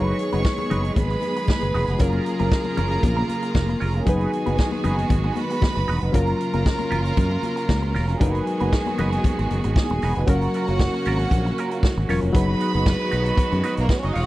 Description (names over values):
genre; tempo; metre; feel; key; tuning
disco; 116 BPM; 4/4; straight; F# major; A4 = 440 Hz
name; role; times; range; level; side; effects
warm studio violin section; second line; 0.0-14.3 s; A#3 to C#6; -28 LUFS; right 2 dB; none
barky reed electric piano; accompaniment; 0.0-14.3 s; F#3 to B4; -28 LUFS; left 2 dB; overdrive
clean electric guitar; accompaniment; 0.0-14.3 s; C#4 to C#5; -30 LUFS; right 4 dB; wah
clear studio string section; sustained chords; 0.0-14.3 s; C#3 to G#4; -29 LUFS; right 2 dB; none
overdriven fingered electric bass; bass; 0.0-14.3 s; D#1 to F#2; -23 LUFS; equal; none
congas; percussion; 0.1-10.0 s; none; -31 LUFS; left 5 dB; none
vintage drum kit; drums; 0.2-14.3 s; hi-hat, kick drum, snare drum; -21 LUFS; equal; none
room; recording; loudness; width
little or no reverb; dry, close 1970s-style studio recording; -19 LUFS; side -16 dB against mid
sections
0.0-10.3 A section; 10.3-14.3 B section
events
none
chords
0.0 G#m7/F#; 2.0 F#maj7; 4.1 G#m7/F#; 6.1 F#maj7; 8.2 G#m7/F#; 10.3 F#maj7; 12.3 G#m7/F#